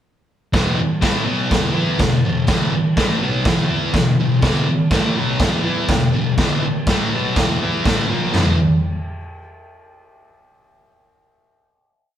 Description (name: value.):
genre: garage rock duo or trio.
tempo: 123 BPM.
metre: 4/4.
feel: straight.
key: unclear.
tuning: A4 = 444 Hz.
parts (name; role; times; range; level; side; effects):
thick fuzz guitar; riff; 0.5-8.6 s; E2 to E4; -18 LUFS; equal; distortion.
raw garage drum kit; drums; 0.5-8.5 s; china cymbal, crash cymbal, kick drum, snare drum, toms; -19 LUFS; equal; none.
room: wet large studio reverb, RT60 1.1 s.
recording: band playing live in one room.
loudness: -15 LUFS.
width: side -10 dB against mid.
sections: 0.5-8.4 riff; 8.4-10.3 final chord.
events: none.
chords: 0.5 E5.